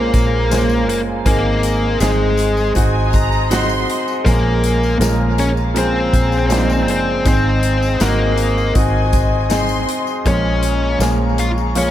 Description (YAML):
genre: pop ballad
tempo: 80 BPM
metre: 4/4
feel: straight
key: Bb minor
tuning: A4 = 440 Hz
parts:
  - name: bluesy overdriven lead guitar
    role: melody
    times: 0.0-11.9 s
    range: Ab3 to F5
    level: -20 LUFS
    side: left 2 dB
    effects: distortion, dub echo
  - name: clear concert grand piano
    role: accompaniment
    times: 0.0-11.9 s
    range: Ab2 to C5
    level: -20 LUFS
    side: right 1 dB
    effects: dub echo
  - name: glassy FM pad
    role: sustained chords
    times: 0.0-11.9 s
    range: Ab4 to Eb6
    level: -25 LUFS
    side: left 2 dB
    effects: ensemble chorus, built-in reverb
  - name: vintage muted fingered electric bass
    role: bass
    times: 0.0-11.9 s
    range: Gb1 to Bb1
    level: -19 LUFS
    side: equal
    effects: none
  - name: modern studio drum kit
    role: drums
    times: 0.1-11.9 s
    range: hi-hat, kick drum, snare drum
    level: -21 LUFS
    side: equal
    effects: none
  - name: tambourine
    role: percussion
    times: 0.1-11.9 s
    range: none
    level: -34 LUFS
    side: left 11 dB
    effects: dub echo
  - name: warm studio violin section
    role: second line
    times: 2.7-4.0, 8.7-10.1 s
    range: Ab5 to C6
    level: -25 LUFS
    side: left 1 dB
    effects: dub echo
room: light reverb, studio reverb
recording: echo-heavy mix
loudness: -14 LUFS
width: side -12 dB against mid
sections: 0.0-11.9 A section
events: none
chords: 0.0 Bbm7; 1.3 Ab; 4.3 Bbm7; 7.3 Ab; 10.3 Bbm7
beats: 0.51 | 1.26 2.01 2.76 3.51 | 4.26 5.01 5.76 6.51 | 7.26 8.01 8.76 9.51 | 10.26 11.01 11.76